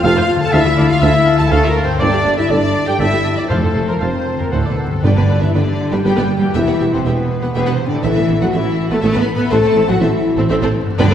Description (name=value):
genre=cinematic, heroic adventure film score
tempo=121 BPM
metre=3/4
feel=straight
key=unclear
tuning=A4 = 440 Hz
part: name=rich symphonic violin section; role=melody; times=0.0-11.1 s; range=A4 to B5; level=-28 LUFS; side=left 3 dB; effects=none
part: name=hollow concert flute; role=second line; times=0.0-5.0 s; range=A4 to A5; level=-25 LUFS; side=equal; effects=none
part: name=rich symphonic violin section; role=second line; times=0.0-11.1 s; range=E4 to A5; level=-28 LUFS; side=left 1 dB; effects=none
part: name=warm oboe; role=second line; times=0.0-4.9 s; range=F#5 to A5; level=-29 LUFS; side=right 1 dB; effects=none
part: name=dark symphonic viola section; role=accompaniment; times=0.0-11.1 s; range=B3 to F#5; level=-23 LUFS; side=right 1 dB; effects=none
part: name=mellow French horn section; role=sustained chords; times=0.0-11.1 s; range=A3 to B4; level=-18 LUFS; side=left 3 dB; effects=none
part: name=concert harp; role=arpeggios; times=0.0-11.1 s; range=E2 to C5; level=-23 LUFS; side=left 4 dB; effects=none
part: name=warm trumpet section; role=stabs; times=0.0-5.0 s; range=A4 to A5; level=-23 LUFS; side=right 2 dB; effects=none
part: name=clear symphonic double bass section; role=bass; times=0.0-11.1 s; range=E1 to D2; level=-22 LUFS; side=right 2 dB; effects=none
part: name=mellow tuba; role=bass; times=0.0-11.0 s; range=E1 to D2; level=-24 LUFS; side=right 2 dB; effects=none
part: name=warm symphonic cello section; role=bass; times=0.0-11.1 s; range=D2 to B3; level=-21 LUFS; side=right 2 dB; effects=none
part: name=bright clarinet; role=second line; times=0.1-4.9 s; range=C5 to F5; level=-27 LUFS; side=equal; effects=none
part: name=timpani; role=percussion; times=3.5-5.8, 11.0-11.1 s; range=F2 to G2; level=-20 LUFS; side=right 1 dB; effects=none
room=wet scoring stage reverb, RT60 1.8 s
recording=heard from further back in the room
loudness=-13 LUFS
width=side -9 dB against mid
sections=0.0-5.0 A section; 5.0-11.1 A section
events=none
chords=0.0 F; 0.5 Dmadd9; 2.0 Gsus2; 3.5 F; 4.5 D7; 5.0 G; 6.5 Emadd9; 8.0 Asus2; 9.5 Am